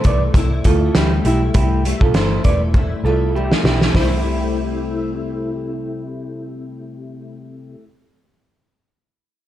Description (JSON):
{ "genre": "indie pop, bedroom pop", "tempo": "100 BPM", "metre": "4/4", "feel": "swing 55% on 16ths", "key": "C major", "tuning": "A4 = 439 Hz", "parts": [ { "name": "electric guitar through a small old amp", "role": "second line", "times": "0.0-5.7 s", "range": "E4 to D5", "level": "-24 LUFS", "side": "right 4 dB", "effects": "wide subtle chorus, tape echo" }, { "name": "picked steel-string acoustic guitar", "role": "accompaniment", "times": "0.0-7.9 s", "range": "C3 to E4", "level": "-24 LUFS", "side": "left 4 dB", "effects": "ensemble chorus, warbly pitch drift" }, { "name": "vintage muted picked electric bass", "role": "bass", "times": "0.0-7.7 s", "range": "E1 to D2", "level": "-20 LUFS", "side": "equal", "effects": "none" }, { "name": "loose indie drum kit", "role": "drums", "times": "0.0-4.1 s", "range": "hi-hat, kick drum, snare drum", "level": "-17 LUFS", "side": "equal", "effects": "vintage 12-bit sampler grit" } ], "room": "light reverb", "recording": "none", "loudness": "-15 LUFS", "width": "side -13 dB against mid", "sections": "0.0-3.9 A section; 3.9-6.4 B section", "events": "drum fill 2.7-3.9", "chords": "0.0 C6" }